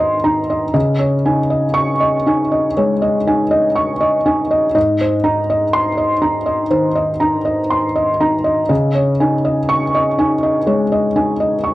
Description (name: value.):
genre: neoclassical minimalist piano.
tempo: 61 BPM.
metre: 4/4.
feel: rubato.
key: unclear.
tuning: A4 = 440 Hz.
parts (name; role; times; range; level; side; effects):
felt-muted upright piano; solo; 0.0-11.7 s; Ab2 to Db6; -13 LUFS; equal; cassette tape.
room: light reverb.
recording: home recording on cassette.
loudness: -13 LUFS.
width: side -17 dB against mid.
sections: 0.0-11.7 A section.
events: none.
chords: 0.0 Abadd9; 0.7 Dbsus2; 4.8 Abadd9; 8.7 Dbsus2.